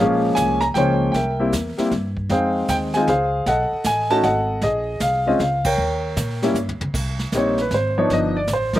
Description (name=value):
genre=jazz piano trio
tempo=155 BPM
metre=3/4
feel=swing 65% on 8ths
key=Ab major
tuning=A4 = 440 Hz
part: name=warm grand piano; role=melody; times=0.0-8.8 s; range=F3 to Bb5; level=-18 LUFS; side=equal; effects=slapback echo
part: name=upright bass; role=bass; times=0.0-8.8 s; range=G1 to Bb2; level=-25 LUFS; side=equal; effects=none
part: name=jazz brush drum kit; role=drums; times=0.4-8.8 s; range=brushed snare drum, crash cymbal, hi-hat, kick drum, snare drum, toms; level=-29 LUFS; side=right 1 dB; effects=none
room=little or no reverb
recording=recorded outdoors, with no room sound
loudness=-18 LUFS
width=side -14 dB against mid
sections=0.0-6.9 A section; 6.9-8.8 B section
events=band accent 5.6; drum fill 6.6-6.9; grand piano solo 6.9-8.8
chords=0.0 Bbm9; 1.1 C7; 2.3 Fm9; 3.5 B7; 4.6 Bbm7; 5.8 Eb7; 6.9 Abadd9; 8.1 G7b13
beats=0.37 0.76 | 1.15 1.53 1.92 | 2.31 2.69 3.08 | 3.47 3.85 4.24 | 4.63 5.01 5.40 | 5.79 6.17 6.56 | 6.95 7.34 7.72 | 8.11 8.50